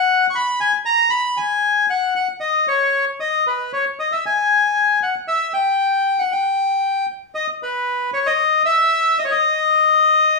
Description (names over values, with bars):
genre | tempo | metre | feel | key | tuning
tango | 116 BPM | 4/4 | rubato | unclear | A4 = 438 Hz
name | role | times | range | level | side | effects
bandoneon | solo | 0.0-10.4 s | B4 to C#6 | -16 LUFS | left 3 dB | none
room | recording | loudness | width
wet studio reverb, RT60 0.6 s | band playing live in one room, studio reverb | -16 LUFS | side -2 dB against mid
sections
0.0-10.4 A section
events
none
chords
none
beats
0.11 0.62 | 1.14 1.65 2.17 2.69 | 3.22 3.74 4.26 4.78 | 5.30 5.81 6.32 6.84 | 7.36 7.88 8.39 8.91 | 9.43 9.95